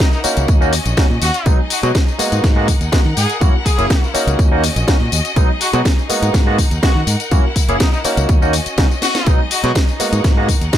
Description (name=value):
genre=filtered disco house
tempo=123 BPM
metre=4/4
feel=straight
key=B major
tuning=A4 = 441 Hz
part: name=brilliant horn section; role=melody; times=0.0-9.7 s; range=D#4 to G#4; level=-23 LUFS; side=left 1 dB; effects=vintage 12-bit sampler grit, sidechain pumping, ping-pong delay
part: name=bright symphonic violin section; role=sustained chords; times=0.0-10.8 s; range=C#4 to F#5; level=-25 LUFS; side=left 1 dB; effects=vintage 12-bit sampler grit, sidechain pumping
part: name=electronic kick drum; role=drums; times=0.0-10.8 s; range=none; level=-14 LUFS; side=equal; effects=none
part: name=house drum kit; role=drums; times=0.0-10.8 s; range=hi-hat, snare drum, tambourine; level=-21 LUFS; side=left 2 dB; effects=sidechain pumping on hats, sidechain pumping on perc
part: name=barky tine electric piano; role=accompaniment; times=0.2-10.8 s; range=F#3 to G#4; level=-20 LUFS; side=right 1 dB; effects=overdrive, phaser, sidechain pumping
part: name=modern bright fingered electric bass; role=bass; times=0.2-10.7 s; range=F#1 to D#3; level=-19 LUFS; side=equal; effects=sidechain pumping
room=little or no reverb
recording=none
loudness=-12 LUFS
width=side -11 dB against mid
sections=0.0-10.8 A section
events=drum fill 9.0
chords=0.5 D#m7; 1.5 B6; 2.2 G#m9; 3.4 F#7; 4.4 D#m7; 5.4 B6; 6.1 G#m9; 7.3 F#7; 8.3 D#m7; 9.3 B6; 10.0 G#m9